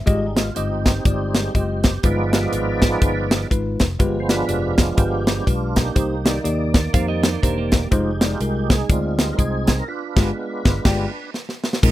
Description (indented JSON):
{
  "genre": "uptempo gospel",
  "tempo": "122 BPM",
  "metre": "4/4",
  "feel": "swing 60% on 8ths",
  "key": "unclear",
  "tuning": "A4 = 440 Hz",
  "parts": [
    { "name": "bell-like tine electric piano", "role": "accompaniment", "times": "0.0-11.9 s", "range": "G2 to G5", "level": "-25 LUFS", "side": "left 2 dB", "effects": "none" },
    { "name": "tonewheel organ", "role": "sustained chords", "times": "0.1-11.9 s", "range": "Eb3 to D5", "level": "-25 LUFS", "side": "right 3 dB", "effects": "slow rotary speaker, overdrive, chorus vibrato" },
    { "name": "fingered electric bass", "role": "bass", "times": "0.1-11.9 s", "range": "E1 to F2", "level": "-24 LUFS", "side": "equal", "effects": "none" },
    { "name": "tight funk drum kit", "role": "drums", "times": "0.1-11.9 s", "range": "crash cymbal, hi-hat, kick drum, snare drum", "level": "-18 LUFS", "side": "equal", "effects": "none" },
    { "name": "clean electric guitar", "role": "second line", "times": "6.9-7.9 s", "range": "Bb3 to F5", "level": "-29 LUFS", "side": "right 10 dB", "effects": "none" }
  ],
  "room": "studio reverb",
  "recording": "rough home demo mix",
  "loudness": "-17 LUFS",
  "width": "side -14 dB against mid",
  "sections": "0.0-11.8 A section",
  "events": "tonewheel organ solo 0.0-11.8; band accent 9.9-11.8; tine electric piano fill 10.4-11.8; drum fill 11.3-11.8",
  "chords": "0.1 Fm9; 2.0 G7b9b13; 4.0 G7b9; 6.0 Cm7; 7.9 Fm7; 9.9 G7b9"
}